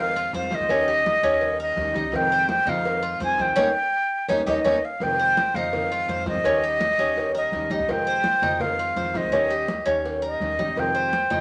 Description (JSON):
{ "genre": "latin, Cuban son and guajira", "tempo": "167 BPM", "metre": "4/4", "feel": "straight", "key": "F minor", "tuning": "A4 = 440 Hz", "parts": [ { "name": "breathy concert flute", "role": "melody", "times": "0.0-11.4 s", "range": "Eb5 to Ab5", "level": "-25 LUFS", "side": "equal", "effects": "none" }, { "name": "picked acoustic archtop guitar", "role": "accompaniment", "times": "0.0-11.4 s", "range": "C3 to G4", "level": "-35 LUFS", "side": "equal", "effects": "none" }, { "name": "Cuban tres", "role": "arpeggios", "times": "0.0-11.4 s", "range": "Db4 to C5", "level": "-29 LUFS", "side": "equal", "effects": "none" }, { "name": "upright bass", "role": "bass", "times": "0.0-11.4 s", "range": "C2 to F3", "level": "-37 LUFS", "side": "equal", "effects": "none" }, { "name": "congas", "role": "percussion", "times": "0.2-11.4 s", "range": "none", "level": "-36 LUFS", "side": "equal", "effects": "none" }, { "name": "cowbell", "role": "percussion", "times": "0.3-11.3 s", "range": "none", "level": "-36 LUFS", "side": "equal", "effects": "none" } ], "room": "wet studio reverb, RT60 0.5 s", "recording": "nothing above 10.7 kHz", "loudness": "-23 LUFS", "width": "mono", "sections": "0.0-5.0 A section; 5.0-11.4 A section", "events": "band accent 3.6-5.0; drum fill 4.5-5.0", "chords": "0.0 Fm7; 0.7 Eb7; 2.1 Fm7; 3.6 Eb7; 5.0 Fm7; 6.5 Eb7; 7.9 Fm7; 9.3 Eb7; 10.8 Fm7" }